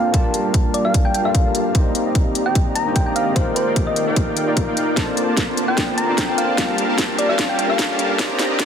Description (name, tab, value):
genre	future bass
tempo	149 BPM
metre	4/4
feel	swing 53% on 16ths, half-time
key	unclear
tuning	A4 = 440 Hz
part	thumb-piano-like synth pluck	melody	0.0-8.1 s	C5 to Bb5	-23 LUFS	equal	chorus, cassette tape, sidechain pumping, digital delay
part	overdriven tine electric piano	accompaniment	0.0-8.7 s	Bb3 to A5	-24 LUFS	left 2 dB	sidechain pumping, digital delay
part	ethereal airy pad	sustained chords	0.0-8.7 s	Eb3 to F5	-32 LUFS	right 2 dB	ensemble chorus, built-in reverb, tremolo, sidechain pumping
part	soft supersaw	riff	0.0-8.7 s	G3 to Bb5	-23 LUFS	equal	sidechain pumping, low-pass filter
part	riser	sound effects	1.9-8.7 s	none	-30 LUFS	right 2 dB	none
part	electronic kick drum	drums	0.1-8.7 s	none	-19 LUFS	equal	studio reverb
part	trap drum kit	drums	0.1-8.7 s	hi-hat, snare drum	-23 LUFS	left 1 dB	soft clipping on snare, studio reverb
room	light reverb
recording	dense, heavily limited modern master, high-pass filter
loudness	-16 LUFS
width	side -8 dB against mid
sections	0.0-8.7 A section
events	build-up 0.0-8.7; filter sweep on supersaw synth 0.0-8.7; filter sweep 0.0-8.7; riser 1.9-8.7; drum fill 5.0-8.7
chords	0.1 Gm7; 1.7 Cm9; 3.4 Ebmaj7; 5.0 Bbmaj7; 6.6 Gm7